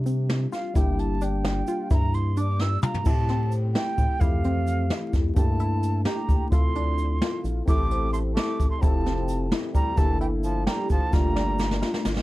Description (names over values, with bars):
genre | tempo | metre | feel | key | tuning
progressive instrumental, band music in an uneven meter | 260 BPM (eighths) | 5/8 | straight | G dorian | A4 = 440 Hz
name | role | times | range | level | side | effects
barky tine electric piano | accompaniment | 0.0-12.2 s | E3 to A4 | -31 LUFS | left 3 dB | none
rubbery square bass | bass | 0.0-12.2 s | F1 to C3 | -26 LUFS | equal | none
tight sequenced synth | arpeggios | 0.1-12.2 s | C4 to G4 | -33 LUFS | equal | chorus
jazz brush drum kit | drums | 0.1-12.2 s | crash cymbal, hi-hat, kick drum, snare drum, toms | -24 LUFS | equal | none
egg shaker | percussion | 0.1-12.2 s | none | -53 LUFS | right 5 dB | none
breathy mellow jazz flute | melody | 0.5-12.1 s | F5 to E6 | -31 LUFS | right 3 dB | none
bright trombone | second line | 7.7-12.1 s | E3 to A3 | -35 LUFS | right 4 dB | none
room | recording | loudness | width
little or no reverb | dark, warm production, vinyl crackle | -22 LUFS | side -18 dB against mid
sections
0.0-3.1 A section; 3.1-12.2 B section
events
flute solo 0.0-3.1; drum fill 2.6-3.1, 11.1-12.2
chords
0.0 Csus2; 0.8 Gm; 3.1 Am7; 4.2 Fmaj7; 5.4 Gm69; 6.5 Dm7; 7.7 Am7; 8.8 Fmaj7; 10.0 Gm69; 11.1 Gm7